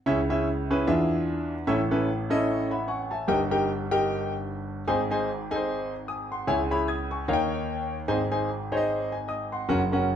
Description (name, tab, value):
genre	gospel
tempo	150 BPM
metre	4/4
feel	swing 59% on 8ths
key	unclear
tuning	A4 = 441 Hz
part	clear concert grand piano	solo	0.1-10.2 s	F#1 to G#6	-24 LUFS	equal	none
room	wet large studio reverb, RT60 1.3 s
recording	band playing live in one room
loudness	-24 LUFS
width	side -9 dB against mid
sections	0.1-10.2 A section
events	grand piano fill 2.5-3.3, 8.9-9.7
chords	0.1 C#m; 0.9 E7b9; 1.7 A; 3.3 D#/G; 4.9 G#; 6.5 C#m; 7.3 D#7; 8.1 G#